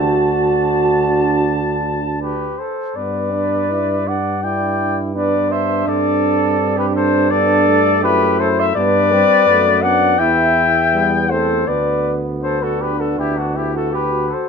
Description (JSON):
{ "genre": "classical, brass quintet", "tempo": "81 BPM", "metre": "4/4", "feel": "straight", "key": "G major", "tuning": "A4 = 440 Hz", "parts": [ { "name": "mellow cornet", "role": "melody", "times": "0.0-14.5 s", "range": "F#4 to A5", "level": "-18 LUFS", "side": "left 8 dB", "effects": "none" }, { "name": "mellow trumpet", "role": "second line", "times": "0.0-14.5 s", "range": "D4 to A5", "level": "-22 LUFS", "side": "right 10 dB", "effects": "none" }, { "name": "clear trombone", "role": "accompaniment", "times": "0.0-14.3 s", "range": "B3 to E4", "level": "-23 LUFS", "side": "right 8 dB", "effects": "none" }, { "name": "mellow French horn", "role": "accompaniment", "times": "0.0-14.5 s", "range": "G3 to F#4", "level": "-22 LUFS", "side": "left 1 dB", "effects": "none" }, { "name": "mellow bass trombone", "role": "bass", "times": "0.0-14.3 s", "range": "D2 to G2", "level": "-22 LUFS", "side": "right 2 dB", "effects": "none" } ], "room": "moderate recital hall reverb, RT60 1.3 s", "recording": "close, detailed microphones", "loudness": "-14 LUFS", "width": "side -6 dB against mid", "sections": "0.0-3.0 A section; 3.0-14.5 B section", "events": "none", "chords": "0.0 D; 3.0 G; 5.9 D7/G; 8.8 G; 10.2 Em; 11.7 D6; 13.2 D" }